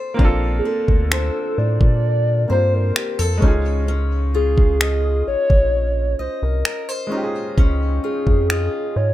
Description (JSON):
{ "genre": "contemporary R&B", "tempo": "65 BPM", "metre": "4/4", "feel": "straight", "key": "unclear", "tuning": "A4 = 440 Hz", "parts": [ { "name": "clear grand piano", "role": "accompaniment", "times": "0.0-9.1 s", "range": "Ab3 to C5", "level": "-27 LUFS", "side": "equal", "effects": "none" }, { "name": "fingerpicked steel-string acoustic guitar", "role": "arpeggios", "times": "0.0-9.1 s", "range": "Bb3 to Eb5", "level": "-27 LUFS", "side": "left 3 dB", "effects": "ping-pong delay" }, { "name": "rubbery square bass", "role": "bass", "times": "0.2-9.1 s", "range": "Bb1 to Bb2", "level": "-20 LUFS", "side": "equal", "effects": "none" }, { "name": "smooth R&B drum kit", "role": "drums", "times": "0.2-8.7 s", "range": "finger snaps, kick drum", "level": "-16 LUFS", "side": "equal", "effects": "none" }, { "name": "hollow clarinet-like synth lead", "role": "melody", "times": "0.6-9.1 s", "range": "Ab4 to D5", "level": "-22 LUFS", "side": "equal", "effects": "chorus, phaser" } ], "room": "little or no reverb", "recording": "none", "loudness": "-16 LUFS", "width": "side -14 dB against mid", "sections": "0.0-9.1 A section", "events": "break 0.0-9.1", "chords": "0.0 Bbmaj9; 3.4 Dbmaj9", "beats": "| 0.19 1.11 2.04 2.96 | 3.88 4.81 5.73 6.65 | 7.58 8.50" }